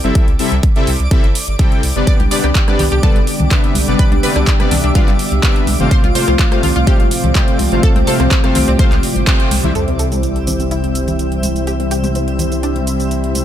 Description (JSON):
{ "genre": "progressive house", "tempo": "125 BPM", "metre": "4/4", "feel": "straight", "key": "C major", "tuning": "A4 = 442 Hz", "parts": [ { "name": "soft supersaw", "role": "stabs", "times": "0.0-13.4 s", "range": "C3 to G5", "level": "-19 LUFS", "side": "left 2 dB", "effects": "sidechain pumping, low-pass filter, ping-pong delay" }, { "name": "saturated sub bass", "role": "bass", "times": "0.0-13.4 s", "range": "G1 to C2", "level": "-18 LUFS", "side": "equal", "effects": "sidechain pumping" }, { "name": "big-room dance drum kit", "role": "drums", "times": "0.0-13.4 s", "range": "cabasa, handclaps, hi-hat, rim click", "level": "-22 LUFS", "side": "right 1 dB", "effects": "overdrive, sidechain pumping on hats, sidechain pumping on perc" }, { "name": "twinkling granular texture", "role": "texture", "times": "0.0-13.4 s", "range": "D5 to E6", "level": "-29 LUFS", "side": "right 1 dB", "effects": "built-in reverb, sidechain pumping" }, { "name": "electronic kick drum", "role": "drums", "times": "0.2-9.4 s", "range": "none", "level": "-13 LUFS", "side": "equal", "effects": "overdrive" }, { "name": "lush unison pad", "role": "sustained chords", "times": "2.1-13.4 s", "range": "A2 to E5", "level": "-21 LUFS", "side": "right 1 dB", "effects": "chorus, sidechain pumping" }, { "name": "analog pluck", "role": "arpeggios", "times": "2.1-13.4 s", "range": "C4 to D5", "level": "-23 LUFS", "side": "left 1 dB", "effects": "ensemble chorus, sidechain pumping, ping-pong delay" }, { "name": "congas", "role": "percussion", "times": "2.2-13.4 s", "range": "none", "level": "-24 LUFS", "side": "left 3 dB", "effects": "sidechain pumping on perc" }, { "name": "sub drop", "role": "sound effects", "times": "9.8-11.7 s", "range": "none", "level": "-25 LUFS", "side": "right 1 dB", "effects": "none" } ], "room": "digital ambience", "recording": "none", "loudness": "-12 LUFS", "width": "side -11 dB against mid", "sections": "0.0-9.8 A section; 9.8-13.4 B section", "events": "band accent 9.3; impact 9.8-11.7; filter sweep on analog synth pad 9.8-13.4", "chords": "0.0 Am7; 2.1 G; 5.9 F; 9.8 C" }